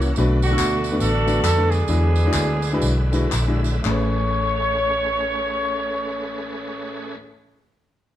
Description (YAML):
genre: uptempo gospel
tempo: 109-146 BPM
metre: 4/4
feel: swing 61% on 8ths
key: A major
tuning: A4 = 445 Hz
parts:
  - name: mellow horn section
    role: melody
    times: 0.0-7.1 s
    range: A3 to C#5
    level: -23 LUFS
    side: equal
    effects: none
  - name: clear concert grand piano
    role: accompaniment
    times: 0.0-7.2 s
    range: A1 to D5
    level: -26 LUFS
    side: left 1 dB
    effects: none
  - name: bright tonewheel organ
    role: sustained chords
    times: 0.0-7.2 s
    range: C#3 to E5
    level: -30 LUFS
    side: right 2 dB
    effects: slow rotary speaker, overdrive, chorus vibrato
  - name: vintage muted fingered electric bass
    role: bass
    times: 0.0-7.1 s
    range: A1 to F2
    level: -21 LUFS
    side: equal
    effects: none
  - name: tambourine and handclaps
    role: percussion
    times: 0.0-4.2 s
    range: none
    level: -30 LUFS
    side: left 1 dB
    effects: none
room: moderate large studio reverb, RT60 1.1 s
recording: band playing live in one room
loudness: -18 LUFS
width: side -12 dB against mid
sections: 0.0-3.9 A section; 3.9-8.2 B section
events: slowing down 0.2-3.9; tonewheel organ fill 3.1-3.9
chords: 0.2 Bm7; 1.9 E9; 3.9 Amaj9